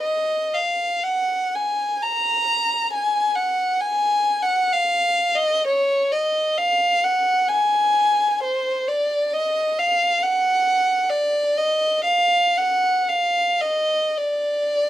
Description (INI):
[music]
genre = classical, free, expressive piece for unaccompanied violin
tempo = 52-69 BPM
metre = 3/4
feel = rubato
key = Eb minor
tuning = A4 = 440 Hz
[part]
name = dark violin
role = solo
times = 0.0-14.9 s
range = C5 to Bb5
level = -18 LUFS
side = equal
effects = none
[sound]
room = light reverb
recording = none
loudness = -18 LUFS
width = side -13 dB against mid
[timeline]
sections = 0.0-14.9 A section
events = none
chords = none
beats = | 0.02 1.03 2.02 | 2.91 3.81 4.75 | 5.67 6.59 7.53 | 8.46 9.33 10.23 | 11.11 12.06 13.08 | 14.16